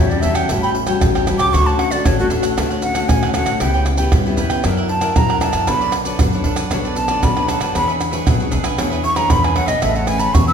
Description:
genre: samba and choro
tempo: 116 BPM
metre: 4/4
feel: straight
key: A major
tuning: A4 = 440 Hz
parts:
  - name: breathy jazz flute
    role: melody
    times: 0.0-10.5 s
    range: F#4 to E6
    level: -20 LUFS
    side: right 1 dB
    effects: none
  - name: cavaquinho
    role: accompaniment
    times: 0.0-10.5 s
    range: D4 to A5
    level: -26 LUFS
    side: right 4 dB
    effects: none
  - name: nylon-string guitar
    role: accompaniment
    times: 0.0-10.5 s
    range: A2 to D5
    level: -22 LUFS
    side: left 4 dB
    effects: none
  - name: upright bass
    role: bass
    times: 0.0-10.5 s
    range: A1 to G2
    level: -22 LUFS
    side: equal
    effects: none
  - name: maracas, pandeiro, tamborim and surdo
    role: percussion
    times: 0.1-10.5 s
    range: none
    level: -19 LUFS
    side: right 1 dB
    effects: none
room: wet recital hall reverb, RT60 1.6 s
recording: recorded in a church or concert hall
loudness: -14 LUFS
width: side -7 dB against mid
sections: 0.0-10.5 A section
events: flute solo 0.0-10.5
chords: 0.0 A6; 1.5 Dmaj7; 3.6 C#m7b5; 4.6 F#aug7; 5.7 Bm9; 7.8 E6; 9.8 Amaj9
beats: 0.50 1.02 | 1.54 2.06 2.58 3.10 | 3.61 4.13 4.65 5.17 | 5.68 6.20 6.72 7.24 | 7.76 8.27 8.79 9.31 | 9.83 10.35

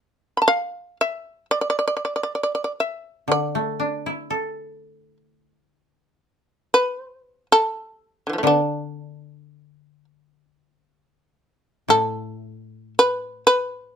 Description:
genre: japanese traditional, Japanese chamber music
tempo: free time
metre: none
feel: none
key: D kumoi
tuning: A4 = 442 Hz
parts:
  - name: shamisen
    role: melody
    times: 0.0-14.0 s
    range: D3 to B5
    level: -19 LUFS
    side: equal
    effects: none
  - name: koto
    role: accompaniment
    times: 3.3-14.0 s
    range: A2 to A4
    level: -25 LUFS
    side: left 1 dB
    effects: none
room: light reverb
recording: close, detailed microphones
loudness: -20 LUFS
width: side -8 dB against mid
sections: 0.0-10.9 A section; 10.9-14.0 A section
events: none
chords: none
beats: free time

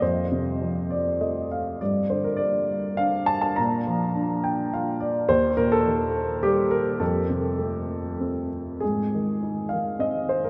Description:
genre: classical, lyrical solo piano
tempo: 102 BPM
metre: 3/4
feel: rubato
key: unclear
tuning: A4 = 443 Hz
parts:
  - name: dark baby grand piano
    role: solo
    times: 0.0-10.5 s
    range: Eb2 to Bb5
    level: -25 LUFS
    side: equal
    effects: none
room: wet cathedral reverb, RT60 5.6 s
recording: in a vast, echoing space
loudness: -25 LUFS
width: mono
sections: 0.0-8.8 A section; 8.8-10.5 B section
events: grand piano fill 0.6-1.8, 4.2-5.3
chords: 0.0 F; 1.8 Gm; 3.6 Bb; 5.3 Eb; 7.0 F; 8.8 Ab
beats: | 0.02 0.61 1.21 | 1.80 2.40 2.99 | 3.58 4.15 4.72 | 5.29 5.86 6.43 | 7.01 7.59 8.20 | 8.82 9.43 10.01

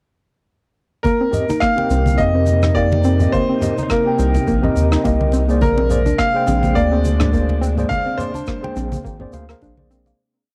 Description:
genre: sunset chillout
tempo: 105 BPM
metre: 4/4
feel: swing 56% on 16ths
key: C minor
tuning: A4 = 440 Hz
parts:
  - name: bright grand piano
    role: melody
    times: 1.0-8.7 s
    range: Bb4 to F5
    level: -23 LUFS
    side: equal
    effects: cassette tape, analog delay
  - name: soft string machine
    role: sustained chords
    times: 1.3-10.2 s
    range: C3 to Eb4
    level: -30 LUFS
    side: equal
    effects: ensemble chorus
  - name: soft round pluck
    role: arpeggios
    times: 1.0-10.2 s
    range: Bb3 to Bb4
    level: -26 LUFS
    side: equal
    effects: chorus, analog delay
  - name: electronic kick drum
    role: drums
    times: 1.0-9.7 s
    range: none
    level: -26 LUFS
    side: equal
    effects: overdrive, cassette tape
  - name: congas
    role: percussion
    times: 1.0-10.2 s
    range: none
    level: -27 LUFS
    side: equal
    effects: none
  - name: shaker and rim click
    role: drums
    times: 1.1-10.2 s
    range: none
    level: -34 LUFS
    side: equal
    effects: cassette tape
  - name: mellow tine electric piano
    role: accompaniment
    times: 1.3-10.2 s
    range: Bb3 to G5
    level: -25 LUFS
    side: equal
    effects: low-pass filter, analog delay
  - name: round analog bass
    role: bass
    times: 1.9-10.1 s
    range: Ab1 to F2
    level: -20 LUFS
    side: equal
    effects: none
room: moderate booth ambience, RT60 0.3 s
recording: home recording on cassette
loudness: -17 LUFS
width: mono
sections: 1.0-10.2 groove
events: filter sweep on tine electric piano 1.0-10.2; fade-out 7.1-10.2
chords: 1.0 Cm7; 5.6 Bb9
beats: | 1.05 1.62 2.19 2.76 | 3.33 3.90 4.48 5.05 | 5.62 6.19 6.76 7.33 | 7.90 8.48 9.05 9.62

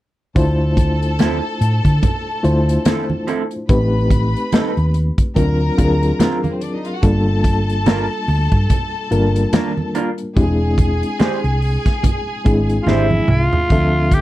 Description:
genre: lush 1970s-style soul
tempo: 72 BPM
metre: 4/4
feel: swing 58% on 16ths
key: D minor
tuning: A4 = 440 Hz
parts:
  - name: clear studio string section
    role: second line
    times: 0.4-13.2 s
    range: A#3 to B5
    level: -26 LUFS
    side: left 2 dB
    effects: none
  - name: reed electric piano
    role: accompaniment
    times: 0.4-14.2 s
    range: E3 to E5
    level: -21 LUFS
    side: left 2 dB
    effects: fast tremolo
  - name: hollow-body short-scale fingered electric bass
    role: bass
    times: 0.4-14.2 s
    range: E1 to D3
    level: -17 LUFS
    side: equal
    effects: none
  - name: modern studio drum kit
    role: drums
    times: 0.4-14.2 s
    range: hi-hat, kick drum, snare drum, toms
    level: -17 LUFS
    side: equal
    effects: none
  - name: congas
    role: percussion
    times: 0.4-14.2 s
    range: none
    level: -25 LUFS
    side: right 3 dB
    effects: none
  - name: electric guitar through a small old amp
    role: riff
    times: 1.2-13.1 s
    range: F3 to B#4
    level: -21 LUFS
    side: right 5 dB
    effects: wide subtle chorus
  - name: raspy tenor saxophone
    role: melody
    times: 12.8-14.2 s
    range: E4 to G4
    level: -19 LUFS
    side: right 1 dB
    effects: none
room: little or no reverb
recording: dry, close 1970s-style studio recording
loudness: -14 LUFS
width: side -15 dB against mid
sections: 0.4-13.7 A section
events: reed electric piano fill 12.5-13.7; drum fill 12.9-13.7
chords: 0.4 Dm9; 3.7 Am7b5; 5.4 D7alt; 7.0 Gm7; 10.4 E7b13; 13.7 Dm9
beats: | 0.36 1.19 2.03 2.86 | 3.69 4.53 5.36 6.20 | 7.03 7.86 8.70 9.53 | 10.37 11.20 12.03 12.87 | 13.70

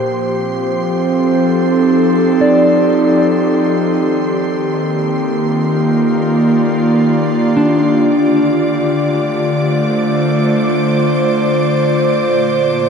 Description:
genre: ambient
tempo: 58 BPM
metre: 4/4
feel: straight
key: F mixolydian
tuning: A4 = 440 Hz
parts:
  - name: airy breathy pad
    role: sustained chords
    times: 0.0-12.9 s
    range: Bb2 to D5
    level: -12 LUFS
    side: equal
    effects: chorus, shimmer reverb
  - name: mellow electric guitar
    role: arpeggios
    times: 0.0-12.7 s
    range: D4 to G5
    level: -17 LUFS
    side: equal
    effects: spring reverb, ping-pong delay, shimmer reverb
  - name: rich studio violin section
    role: texture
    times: 0.0-12.9 s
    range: C6 to D7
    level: -27 LUFS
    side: right 2 dB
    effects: shimmer reverb
room: wet lush hall reverb, RT60 2.7 s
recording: dark, warm production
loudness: -12 LUFS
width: side -6 dB against mid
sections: 0.0-12.9 A section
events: fade-in on violin section 0.0-12.9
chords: 0.0 F7; 4.0 Ebmaj7; 8.1 Dm7; 12.2 Bb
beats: 0.89 1.91 2.93 | 3.96 4.98 6.02 7.05 | 8.09 9.14 10.18 11.21 | 12.24

